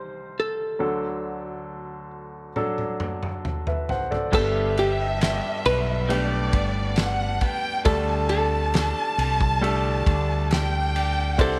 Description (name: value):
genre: pop ballad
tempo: 68 BPM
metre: 4/4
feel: straight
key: G major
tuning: A4 = 440 Hz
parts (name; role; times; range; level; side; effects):
- hollow-body jazz guitar; melody; 0.0-11.6 s; G4 to C5; -29 LUFS; equal; none
- clear baby grand piano; accompaniment; 0.0-11.6 s; C2 to F#5; -31 LUFS; equal; none
- loose indie drum kit; drums; 2.6-11.6 s; crash cymbal, kick drum, ride cymbal, snare drum, toms; -30 LUFS; equal; none
- warm symphonic violin section; second line; 4.3-11.6 s; D5 to A5; -30 LUFS; equal; none
- twelve-string electric guitar; arpeggios; 4.3-11.6 s; G2 to A4; -37 LUFS; equal; none
- mellow fretless electric bass; bass; 4.3-11.6 s; G1 to D2; -28 LUFS; equal; none
room: light reverb, small room reverb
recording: none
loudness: -24 LUFS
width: mono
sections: 0.0-4.3 A section; 4.3-11.6 B section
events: drum fill 2.6-4.3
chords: 0.0 Cm; 0.8 D; 4.3 Gadd9; 7.9 Dsus4